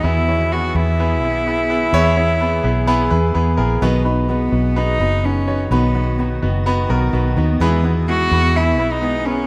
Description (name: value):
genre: piano-driven pop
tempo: 127 BPM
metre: 4/4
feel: swing 56% on 16ths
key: unclear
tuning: A4 = 440 Hz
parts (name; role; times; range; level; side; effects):
- warm cello; melody; 0.0-9.5 s; B3 to F#4; -22 LUFS; equal; none
- clear concert grand piano; accompaniment; 0.0-9.5 s; B2 to C#5; -24 LUFS; equal; none
- granular cloud pad; sustained chords; 0.0-9.5 s; D#3 to G#4; -30 LUFS; equal; built-in reverb
- vintage muted fingered electric bass; bass; 0.0-9.5 s; F#1 to E2; -21 LUFS; equal; none
- fingerpicked steel-string acoustic guitar; riff; 3.8-9.5 s; B2 to B4; -30 LUFS; equal; none
room: light reverb, small room ambience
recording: rough home demo mix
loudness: -17 LUFS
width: mono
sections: 0.0-3.8 A section; 3.8-9.5 B section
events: none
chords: 0.0 E; 3.8 B; 7.6 E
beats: | 0.04 0.51 0.98 1.46 | 1.93 2.40 2.88 3.35 | 3.82 4.29 4.77 5.24 | 5.71 6.19 6.66 7.13 | 7.61 8.08 8.55 9.02